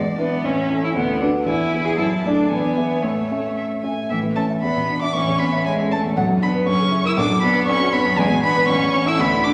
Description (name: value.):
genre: quick classical-period movement for piano trio.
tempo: 117 BPM.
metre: 2/4.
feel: straight.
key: A major.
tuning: A4 = 439 Hz.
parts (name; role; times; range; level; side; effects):
warm violin; melody; 0.0-9.5 s; C#5 to E6; -25 LUFS; equal; none.
warm baby grand piano; accompaniment; 0.0-9.5 s; A1 to E5; -23 LUFS; equal; none.
rich cello; second line; 0.2-9.5 s; E3 to G#4; -24 LUFS; equal; none.
room: wet scoring stage reverb, RT60 1.7 s.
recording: none.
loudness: -20 LUFS.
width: mono.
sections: 0.0-4.1 A section; 4.1-9.5 B section.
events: none.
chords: 0.4 A; 0.9 Bm/D; 1.5 E; 2.0 D/F#; 2.5 E; 3.0 A; 4.6 E5; 5.1 A; 6.2 Bm; 6.7 F#7; 7.2 Bm; 8.2 E7; 8.7 A.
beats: 0.43 | 0.95 1.46 | 1.98 2.50 | 3.03 3.57 | 4.10 4.62 | 5.14 5.65 | 6.16 6.67 | 7.17 7.67 | 8.18 8.69 | 9.19.